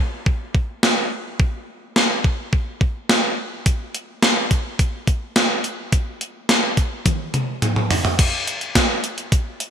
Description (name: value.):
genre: pop.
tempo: 106 BPM.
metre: 4/4.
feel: straight.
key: none.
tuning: none.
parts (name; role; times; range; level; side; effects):
gated 80s digital drum machine; drums; 0.3-9.7 s; crash cymbal, hi-hat, kick drum, snare drum, toms; -17 LUFS; equal; gated reverb, gated reverb snare.
room: light reverb.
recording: bright 1980s-style digital production.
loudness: -18 LUFS.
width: side -8 dB against mid.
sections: 0.0-8.2 A section; 8.2-9.7 B section.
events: drum fill 7.1-8.2.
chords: none.